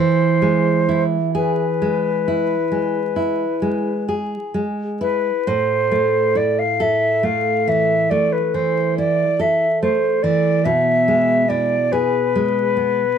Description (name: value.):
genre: romantic duo for flute and classical guitar.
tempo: 42-48 BPM (dotted quarters).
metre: 12/8.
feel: rubato.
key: A minor.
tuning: A4 = 440 Hz.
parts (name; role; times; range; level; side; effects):
silver concert flute; melody; 0.0-13.2 s; B4 to F5; -18 LUFS; left 1 dB; none.
nylon-string guitar; accompaniment; 0.0-13.2 s; A2 to A4; -19 LUFS; right 1 dB; none.
room: moderate booth ambience, RT60 0.3 s.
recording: vinyl crackle.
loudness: -16 LUFS.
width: side -7 dB against mid.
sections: 0.0-13.2 A section.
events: none.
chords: 0.0 E; 5.5 Am; 10.7 E/B.